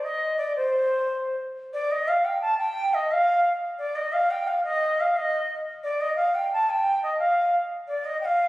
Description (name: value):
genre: medieval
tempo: 117 BPM (dotted quarters)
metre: 6/8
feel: straight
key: unclear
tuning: A4 = 439 Hz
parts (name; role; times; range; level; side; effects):
- bright reedy bansuri; solo; 0.0-8.5 s; C5 to A5; -22 LUFS; equal; none
room: wet concert hall reverb, RT60 1.7 s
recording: recorded on a phone in the room, studio reverb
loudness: -22 LUFS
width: side -17 dB against mid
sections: 0.0-1.6 A section; 1.6-8.5 A section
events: none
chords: none